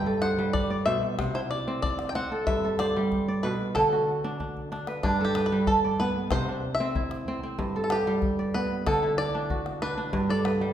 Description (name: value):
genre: west african traditional, West African string and xylophone music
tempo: 94 BPM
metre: 4/4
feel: straight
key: G major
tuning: A4 = 440 Hz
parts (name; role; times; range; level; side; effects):
- bluegrass banjo; melody; 0.0-10.6 s; D4 to G5; -29 LUFS; equal; none
- kora; arpeggios; 0.0-10.7 s; G2 to D5; -27 LUFS; right 1 dB; none
- calabash; percussion; 0.2-10.6 s; none; -34 LUFS; left 3 dB; none
room: wet recital hall reverb, RT60 1.6 s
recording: recorded in a church or concert hall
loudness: -24 LUFS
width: side -10 dB against mid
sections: 0.0-5.0 A section; 5.0-10.7 B section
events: drum fill 4.4-5.0; five-string banjo solo 5.0-10.7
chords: 0.0 G; 1.2 C; 2.5 G; 3.8 D; 5.0 G; 6.3 C; 7.6 G; 8.9 D; 10.1 G